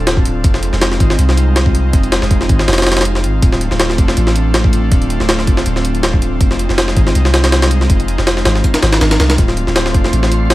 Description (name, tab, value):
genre	drum and bass, jungle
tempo	161 BPM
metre	4/4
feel	swing 54% on 16ths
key	unclear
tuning	A4 = 440 Hz
part	airy breathy pad	sustained chords	0.0-10.5 s	Ab3 to A4	-19 LUFS	equal	chorus
part	long sustained 808-style bass	bass	0.0-10.5 s	D1 to C2	-15 LUFS	equal	none
part	jungle sampler-style drum kit	drums	0.1-10.5 s	hi-hat, kick drum, snare drum	-13 LUFS	equal	overdrive
part	wind-like tuned noise texture	texture	9.6-10.5 s	C6	-29 LUFS	right 5 dB	built-in reverb
room	digital ambience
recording	vinyl crackle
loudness	-11 LUFS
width	side -17 dB against mid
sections	0.0-10.5 A section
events	none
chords	0.4 Fm7; 3.4 Dm7; 6.4 Fm7; 9.4 Dm7